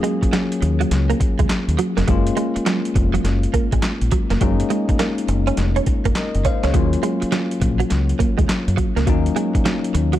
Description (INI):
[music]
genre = R&B, new jack swing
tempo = 103 BPM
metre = 4/4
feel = swing 64% on 16ths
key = Eb minor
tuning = A4 = 436 Hz
[part]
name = bell-like tine electric piano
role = accompaniment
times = 0.0-10.2 s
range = Gb3 to F5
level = -23 LUFS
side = left 4 dB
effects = auto-pan
[part]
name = direct-recorded clean electric guitar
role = riff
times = 0.0-10.2 s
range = Gb3 to Db4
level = -25 LUFS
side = right 8 dB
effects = ensemble chorus
[part]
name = boom bap sampler-style drum kit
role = drums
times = 0.0-10.2 s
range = handclaps, hi-hat, kick drum, snare drum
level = -21 LUFS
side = equal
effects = none
[part]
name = deep dub fingered electric bass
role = bass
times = 0.2-10.2 s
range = F1 to Gb2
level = -20 LUFS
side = equal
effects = none
[sound]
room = digital ambience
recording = dark, warm production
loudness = -17 LUFS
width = side -13 dB against mid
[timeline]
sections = 0.0-10.2 A section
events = none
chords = 0.0 Ebm9